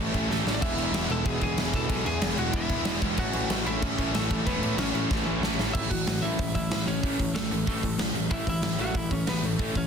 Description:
punk rock; 187 BPM; 4/4; straight; A major; A4 = 442 Hz
lightly driven lead guitar; melody; 0.0-9.9 s; A3 to A5; -33 LUFS; equal; tape echo
cranked stack guitar; riff; 0.0-9.9 s; A2 to A4; -32 LUFS; left 13 dB; overdrive
distorted electric guitar; riff; 0.0-9.9 s; E2 to A3; -33 LUFS; right 12 dB; overdrive
distorted electric guitar; riff; 0.0-5.7 s; E2 to A3; -34 LUFS; right 1 dB; distortion
fuzz picked electric bass; bass; 0.0-9.9 s; E1 to A2; -32 LUFS; equal; overdrive
big rock drum kit; drums; 0.1-9.8 s; crash cymbal, hi-hat, kick drum, snare drum; -29 LUFS; equal; soft clipping on snare
light reverb; dense, heavily limited modern master; -24 LUFS; side -7 dB against mid
0.0-5.7 A section; 5.7-9.9 B section
drum fill 0.3-0.6, 5.1-5.7
0.0 A; 0.6 E; 3.2 A
0.30 | 0.62 0.94 1.26 1.58 | 1.90 2.22 2.54 2.86 | 3.18 3.50 3.82 4.14 | 4.46 4.78 5.10 5.42 | 5.75 6.07 6.39 6.71 | 7.03 7.35 7.67 7.99 | 8.31 8.63 8.95 9.27 | 9.59

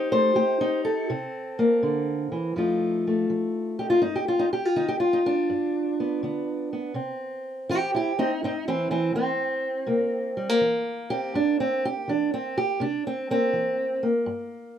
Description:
acoustic country blues, solo or duo; 82 BPM; 4/4; swing 68% on 8ths; C mixolydian; A4 = 442 Hz
fingerpicked steel-string acoustic guitar; solo; 0.0-14.8 s; F2 to C5; -23 LUFS; equal
moderate studio reverb, RT60 0.6 s; rough home demo mix; -23 LUFS; side -9 dB against mid
0.0-6.9 A section; 6.9-14.8 B section
steel-string acoustic guitar solo 6.9-14.8
0.0 F7 (rootless); 1.1 C7; 2.6 F7; 4.0 G7; 6.9 C7
0.36 | 1.09 1.82 2.55 3.28 | 4.02 4.75 5.48 6.21 | 6.95 7.68 8.41 9.14 | 9.87 10.61 11.34 12.07 | 12.80 13.53 14.26

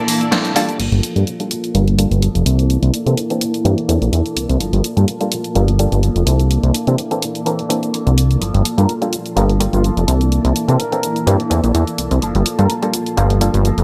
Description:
filtered disco house; 126 BPM; 4/4; swing 54% on 16ths; G dorian; A4 = 440 Hz
string machine, full ensemble; sustained chords; 0.0-13.8 s; Bb3 to A5; -26 LUFS; equal; ensemble chorus, low-pass filter
electric guitar with an envelope filter; riff; 0.0-13.8 s; E3 to A4; -28 LUFS; equal; phaser, low-pass filter
house drum kit; drums; 0.1-13.8 s; crash cymbal, hi-hat, shaker, snare drum; -25 LUFS; equal
muted clav; accompaniment; 0.3-13.8 s; E3 to C5; -24 LUFS; equal; phaser, low-pass filter
plucky analog bass; bass; 0.8-13.8 s; F1 to C3; -16 LUFS; equal; low-pass filter
mellow trumpet section; melody; 8.8-12.7 s; F4 to Bb4; -27 LUFS; equal; low-pass filter
light reverb; -16 LUFS; mono
0.8-13.8 A section
break 0.0-0.8; band accent 0.3; filter sweep 0.8-13.8
0.0 C13; 0.8 Gm9; 2.5 C13; 4.6 Gm9; 6.3 C13; 8.4 Gm9; 10.1 C13; 12.2 Gm9
0.32 | 0.80 1.27 1.75 2.22 | 2.70 3.18 3.65 4.13 | 4.61 5.08 5.56 6.03 | 6.51 6.99 7.46 7.94 | 8.41 8.89 9.37 9.84 | 10.32 10.79 11.27 11.75 | 12.22 12.70 13.18 13.65

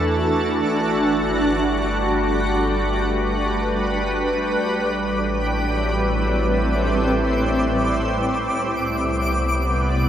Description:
ambient; free time; A dorian; A4 = 440 Hz
shimmering ambient pad; sustained chords; 0.0-10.1 s; A2 to D5; -20 LUFS; equal; chorus, built-in reverb
warm sub bass; bass; 0.0-10.1 s; G1 to E2; -26 LUFS; equal
bowed-like drone; drone; 0.0-10.1 s; A3 to A4; -31 LUFS; equal; built-in reverb
twinkling granular texture; texture; 4.6-10.1 s; D6; -28 LUFS; equal; built-in reverb
wet concert hall reverb, RT60 1.9 s, digital ambience; -18 LUFS; side -10 dB against mid
0.0-10.1 A section
fade-out on synth drone 0.0-10.1
0.0 E9sus4; 0.7 Gmaj7; 4.6 Am9; 8.6 Cmaj9
free time

